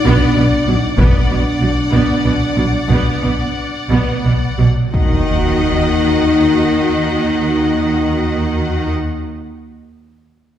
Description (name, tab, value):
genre	cinematic, epic orchestral film score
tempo	57-66 BPM (dotted quarters)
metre	12/8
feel	straight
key	Eb harmonic minor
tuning	A4 = 439 Hz
part	rich studio violin section	melody	0.0-8.9 s	F#5	-27 LUFS	left 4 dB	none
part	rich studio violin section	second line	0.0-8.9 s	D5 to Eb5	-24 LUFS	left 2 dB	none
part	dark French horn section	sustained chords	0.0-8.9 s	D4 to Eb4	-19 LUFS	left 2 dB	none
part	rich symphonic viola section	accompaniment	0.1-8.9 s	F#3 to Gb4	-23 LUFS	equal	none
part	rich symphonic cello section	bass	0.1-8.9 s	B2 to Eb3	-20 LUFS	right 1 dB	none
part	rich symphonic double bass section	bass	0.1-8.9 s	B1 to Eb2	-18 LUFS	right 2 dB	none
part	taiko ensemble	drums	1.0-1.6 s	none	-15 LUFS	left 1 dB	none
part	impact	sound effects	4.9-9.0 s	none	-20 LUFS	equal	none
room	wet scoring stage reverb, RT60 1.5 s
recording	heard from further back in the room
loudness	-13 LUFS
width	side -10 dB against mid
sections	0.0-4.9 A section; 4.9-9.1 B section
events	slowing down 0.0-4.9; impact 4.9-9.1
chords	0.0 Bm; 4.9 Ebm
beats	0.06 | 0.99 1.93 2.90 3.90 | 4.94 5.98 7.01 8.05